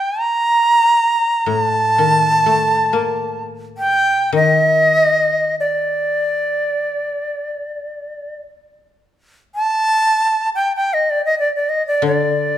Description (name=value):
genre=japanese traditional, Japanese chamber music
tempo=free time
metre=none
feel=none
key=D miyako bushi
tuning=A4 = 439 Hz
part: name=bright reedy shakuhachi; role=melody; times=0.0-12.6 s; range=D5 to Bb5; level=-15 LUFS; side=right 1 dB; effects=none
part: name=koto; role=accompaniment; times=1.5-12.6 s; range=A2 to Bb3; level=-20 LUFS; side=left 4 dB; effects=none
room=moderate recital hall reverb, RT60 1.6 s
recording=minimal, uncompressed stereo recording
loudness=-14 LUFS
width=side -11 dB against mid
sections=0.0-12.6 A section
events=slowing down 8.6-12.6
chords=none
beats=free time